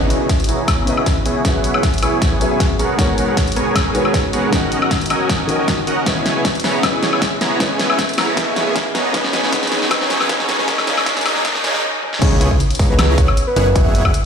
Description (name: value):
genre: future bass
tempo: 156 BPM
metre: 4/4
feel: swing 53% on 16ths, half-time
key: unclear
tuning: A4 = 440 Hz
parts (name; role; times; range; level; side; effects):
- felt-muted upright piano; accompaniment; 0.0-12.2 s; C#3 to E5; -22 LUFS; left 2 dB; sidechain pumping, digital delay
- ethereal airy pad; sustained chords; 0.1-11.8 s; D#2 to A#5; -30 LUFS; left 1 dB; none
- dense compressed supersaw; riff; 0.0-14.1 s; A#3 to A#5; -20 LUFS; right 2 dB; sidechain pumping, low-pass filter, digital delay
- riser; sound effects; 0.0-11.8 s; none; -27 LUFS; right 1 dB; none
- big-room dance drum kit; drums; 0.1-14.2 s; crash cymbal, hi-hat, snare drum, toms, woodblock; -20 LUFS; left 1 dB; studio reverb
- electronic kick drum; drums; 0.3-14.1 s; none; -18 LUFS; equal; studio reverb
- soft octave-layered synth lead; melody; 12.2-14.0 s; B4 to E5; -22 LUFS; equal; chorus, sidechain pumping, tape echo
- fat analog bass; bass; 12.2-14.1 s; F#1 to C#2; -16 LUFS; equal; sidechain pumping
room: moderate lush hall reverb, RT60 1.7 s, digital ambience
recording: played on a big sound system in a bare room, stone room reverb, high-pass filter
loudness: -14 LUFS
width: side -7 dB against mid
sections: 0.0-12.2 A section; 12.2-14.3 B section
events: build-up 0.0-12.2; drum fill 0.0-11.8, 12.0; filter sweep on supersaw synth 0.0-12.2; filter sweep 0.0-12.2; stop 11.8-12.2; drop 12.2-14.3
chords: 0.0 C#m7; 1.4 F#9sus4; 2.8 G#m11; 4.5 D#m7; 6.1 C#m7; 7.6 F#9sus4; 8.9 G#m11; 10.7 D#m7; 12.2 C#m7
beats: 0.29 0.68 1.06 | 1.45 1.83 2.22 2.60 | 2.99 3.37 3.76 4.14 | 4.53 4.91 5.29 5.68 | 6.06 6.45 6.83 7.22 | 7.60 7.99 8.37 8.76 | 9.14 9.53 9.91 10.29 | 10.68 11.06 11.45 11.83 | 12.22 12.60 12.99 13.37 | 13.76 14.14